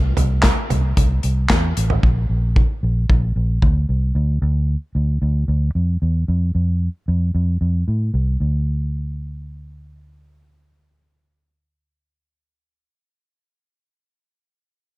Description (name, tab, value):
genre	piano-driven pop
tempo	113 BPM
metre	4/4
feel	straight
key	D minor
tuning	A4 = 440 Hz
part	vintage muted fingered electric bass	bass	0.0-12.9 s	A1 to A2	-18 LUFS	equal	none
part	natural country drum kit	drums	0.2-3.7 s	handclaps, hi-hat, kick drum, snare drum, toms	-17 LUFS	equal	none
room	little or no reverb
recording	dark, warm production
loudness	-17 LUFS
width	side -20 dB against mid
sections	0.0-8.4 A section; 8.4-12.7 B section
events	none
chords	none